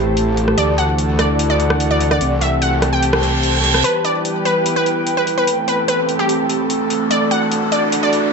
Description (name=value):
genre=heavy wobble dubstep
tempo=147 BPM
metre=4/4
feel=half-time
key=E minor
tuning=A4 = 440 Hz
part: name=dark chamber string section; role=sustained chords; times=0.0-8.3 s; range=E3 to B4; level=-22 LUFS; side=equal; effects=none
part: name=metallic wobble bass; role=bass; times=0.0-3.8 s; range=A1 to D2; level=-18 LUFS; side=equal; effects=distortion, chorus, overdrive
part: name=airy breathy pad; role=texture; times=0.0-8.3 s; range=C4 to A5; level=-21 LUFS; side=right 1 dB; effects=chorus
part: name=dubstep drum kit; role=drums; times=0.2-8.2 s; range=hi-hat, rim click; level=-23 LUFS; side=equal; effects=overdrive, low-pass filter on hats, low-pass filter on snare, low-pass filter on toms, low-pass filter on cymbals
part: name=wide unison pluck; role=melody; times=0.6-8.3 s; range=G4 to G5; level=-19 LUFS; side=equal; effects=ping-pong delay
part: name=reverse cymbal and riser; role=sound effects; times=3.1-8.3 s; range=none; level=-24 LUFS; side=right 2 dB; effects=none
room=wet digital room reverb, RT60 1.1 s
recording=dark, warm production, nothing above 8.0 kHz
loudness=-14 LUFS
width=side -4 dB against mid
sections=0.0-3.8 A section; 3.8-8.3 B section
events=reverse cymbal 3.1-3.8; build-up 3.8-8.3; riser 3.8-8.3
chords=0.0 Am7; 0.6 Dadd9; 2.2 Am7/C; 3.8 Em; 5.5 Am7; 7.1 Dadd9